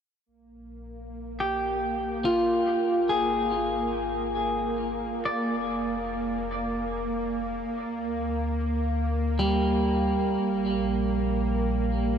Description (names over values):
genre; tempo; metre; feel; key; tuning
ambient; 71 BPM; 3/4; straight; unclear; A4 = 439 Hz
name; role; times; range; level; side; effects
warm sub bass; bass; 0.3-12.2 s; F1 to D2; -33 LUFS; left 1 dB; none
bowed-like drone; drone; 0.7-12.2 s; Bb3; -30 LUFS; equal; built-in reverb
clean electric guitar; arpeggios; 1.4-12.1 s; G3 to D5; -27 LUFS; right 1 dB; diffuse ambient delay
room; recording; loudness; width
moderate huge ambient reverb, RT60 8.7 s; none; -24 LUFS; side -8 dB against mid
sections
0.3-12.2 A section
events
fade-in on sub bass 0.3-12.2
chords
0.3 Bb5; 2.8 Absus2; 5.3 Bb/F; 7.9 Dsus4; 10.4 Bb5